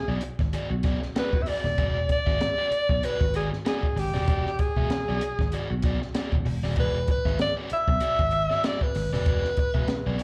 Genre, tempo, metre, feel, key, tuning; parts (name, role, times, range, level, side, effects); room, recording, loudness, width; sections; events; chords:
funk; 96 BPM; 4/4; swing 56% on 16ths; E mixolydian; A4 = 439 Hz
breathy alto saxophone; melody; 0.0-10.2 s; G4 to E5; -29 LUFS; equal; slapback echo
crunchy overdriven guitar; accompaniment; 0.1-10.2 s; F#4 to E5; -38 LUFS; equal; slapback echo
slap bass; bass; 0.1-10.2 s; D#1 to E2; -31 LUFS; equal
compact cocktail drum kit; drums; 0.2-10.2 s; hi-hat, kick drum, snare drum; -30 LUFS; equal
small room ambience; live gig heard through the venue's PA, club reverb; -26 LUFS; mono
0.0-10.2 A section
0.0 E9